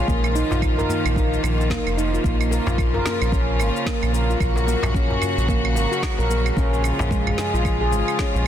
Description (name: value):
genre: organic downtempo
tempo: 111 BPM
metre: 4/4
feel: swing 59% on 16ths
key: Bb minor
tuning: A4 = 440 Hz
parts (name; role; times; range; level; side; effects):
- clear studio string section; sustained chords; 0.0-8.5 s; Db3 to Gb4; -26 LUFS; left 1 dB; sidechain pumping
- handpan; arpeggios; 0.0-8.5 s; Ab3 to Bb4; -24 LUFS; equal; ping-pong delay
- round analog bass; bass; 0.0-8.5 s; F1 to Bb1; -22 LUFS; equal; none
- electronic cabasa, claves and snare drum; drums; 0.1-8.4 s; none; -31 LUFS; right 2 dB; studio reverb
- electronic kick drum; drums; 0.1-8.3 s; none; -24 LUFS; equal; studio reverb
- darbuka; percussion; 0.2-8.4 s; none; -30 LUFS; left 1 dB; none
room: light reverb, small room ambience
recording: dense, heavily limited modern master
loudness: -18 LUFS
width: side -10 dB against mid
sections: 0.0-8.5 A section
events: none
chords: 0.1 Ebsus2/Bb; 2.2 Bbm; 4.4 Gb/Bb; 6.6 Db/Bb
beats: | 0.08 0.62 1.16 1.70 | 2.24 2.78 3.33 3.87 | 4.41 4.95 5.49 6.03 | 6.57 7.11 7.65 8.19